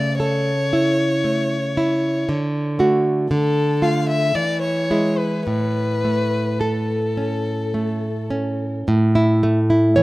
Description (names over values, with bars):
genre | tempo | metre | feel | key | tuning
romantic duo for violin and classical guitar | 52-59 BPM | 3/4 | rubato | A major | A4 = 440 Hz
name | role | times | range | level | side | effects
warm violin | melody | 0.0-8.3 s | A4 to F5 | -24 LUFS | left 3 dB | tape echo
nylon-string guitar | accompaniment | 0.0-10.0 s | A2 to C#5 | -18 LUFS | right 1 dB | none
room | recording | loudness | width
moderate small room reverb, RT60 0.5 s | rough home demo mix | -17 LUFS | side -19 dB against mid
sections
0.0-8.9 A section; 8.9-10.0 A section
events
none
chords
0.0 A/C#; 2.3 D; 3.3 Dm; 4.4 E; 5.5 A; 8.9 A5